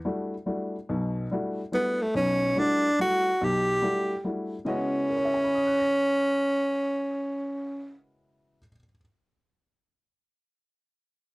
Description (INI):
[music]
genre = jazz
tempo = 142 BPM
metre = 3/4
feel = swing 66% on 8ths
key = C# dorian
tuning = A4 = 440 Hz
[part]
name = warm baby grand piano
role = accompaniment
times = 0.0-9.0 s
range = B1 to A#6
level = -30 LUFS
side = left 1 dB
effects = none
[part]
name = breathy tenor saxophone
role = melody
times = 1.7-8.0 s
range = A3 to G4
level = -24 LUFS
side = equal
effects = none
[sound]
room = light reverb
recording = dry, gritty hardware recording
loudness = -24 LUFS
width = side -23 dB against mid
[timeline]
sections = 0.0-4.7 A section; 4.7-7.2 B section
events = none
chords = 0.0 Em11; 4.7 C#m11